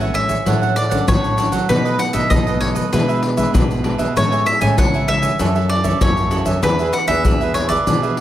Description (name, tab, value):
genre	samba and choro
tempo	97 BPM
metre	4/4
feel	straight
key	unclear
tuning	A4 = 439 Hz
part	bowl-back mandolin	melody	0.0-8.2 s	B4 to G#5	-20 LUFS	right 1 dB	none
part	cavaquinho	accompaniment	0.0-8.2 s	D4 to G#5	-24 LUFS	right 5 dB	none
part	nylon-string guitar	accompaniment	0.0-8.2 s	F#2 to A4	-24 LUFS	left 4 dB	none
part	nylon-string guitar	bass	0.0-8.2 s	E2 to F#3	-21 LUFS	right 1 dB	none
part	egg shaker, pandeiro and surdo	percussion	0.0-8.2 s	none	-20 LUFS	left 1 dB	none
room	moderate large studio reverb, RT60 1.3 s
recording	none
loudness	-14 LUFS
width	side -12 dB against mid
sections	0.0-8.2 A section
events	none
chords	0.5 Dmaj7/A; 1.7 B7; 2.9 E7/B; 4.2 Amaj7; 5.4 F#m7; 6.6 E7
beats	0.46 1.08 | 1.69 2.31 2.93 3.54 | 4.16 4.78 5.40 6.01 | 6.63 7.25 7.87